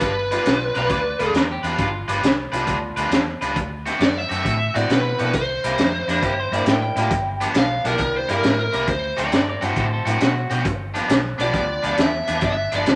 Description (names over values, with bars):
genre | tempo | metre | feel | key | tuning
electric blues shuffle | 135 BPM | 4/4 | swing 68% on 8ths | G mixolydian | A4 = 439 Hz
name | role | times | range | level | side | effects
lead guitar through a small cranked amp | melody | 0.0-1.3, 4.0-13.0 s | Bb4 to F5 | -25 LUFS | equal | overdrive
overdriven electric guitar | riff | 0.0-13.0 s | G2 to B4 | -27 LUFS | equal | spring reverb
vintage muted fingered electric bass | bass | 0.0-13.0 s | G1 to B2 | -30 LUFS | equal | none
crunchy breakbeat drum kit | drums | 0.0-13.0 s | hi-hat, kick drum, snare drum | -25 LUFS | equal | none
warm upright piano | accompaniment | 0.3-13.0 s | A3 to A4 | -32 LUFS | equal | none
electric guitar at the edge of break-up | second line | 0.8-2.2, 6.1-10.6 s | D4 to G5 | -29 LUFS | equal | none
room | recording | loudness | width
light reverb | none | -21 LUFS | mono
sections
0.0-10.7 A section; 10.7-13.0 B section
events
lead electric guitar solo 10.7-13.0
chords
0.0 G7; 3.6 D7; 5.3 C7; 7.1 G7; 8.0 C7; 8.9 D7; 10.7 G7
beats
| 0.02 0.46 0.91 1.35 | 1.79 2.23 2.68 3.12 | 3.56 4.01 4.45 4.89 | 5.34 5.78 6.22 6.67 | 7.11 7.55 7.99 8.44 | 8.88 9.32 9.77 10.21 | 10.65 11.10 11.54 11.98 | 12.43 12.87